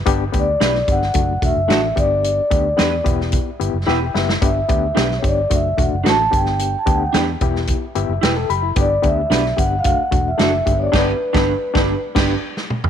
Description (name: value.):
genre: uptempo 1960s-style soul.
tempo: 110 BPM.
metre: 4/4.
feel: straight.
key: G major.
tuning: A4 = 441 Hz.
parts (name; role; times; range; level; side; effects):
overdriven reed electric piano; accompaniment; 0.1-12.3 s; A3 to B5; -23 LUFS; left 11 dB; fast tremolo.
vintage muted fingered electric bass; bass; 0.1-12.3 s; E1 to E2; -22 LUFS; right 1 dB; none.
natural country drum kit; drums; 0.1-12.9 s; crash cymbal, hi-hat, kick drum, snare drum, toms; -20 LUFS; right 1 dB; none.
vibraphone with soft mallets; melody; 0.4-12.0 s; B4 to A5; -20 LUFS; equal; none.
electric guitar through a small old amp; stabs; 0.6-12.4 s; D4 to B4; -24 LUFS; right 13 dB; warbly pitch drift.
room: light reverb, studio ambience.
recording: 1960s-style stereo with parts hard left and right.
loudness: -15 LUFS.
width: side -8 dB against mid.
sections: 0.0-12.9 A section.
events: reed electric piano fill 3.6-4.4, 7.7-8.8; drum fill 3.9-4.4, 12.6-12.9; band accent 10.9-12.9.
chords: 0.1 G; 1.2 D; 2.0 G; 3.1 Em; 4.4 G; 5.5 D; 6.3 G; 7.4 Em; 8.8 G; 9.9 D; 10.7 G.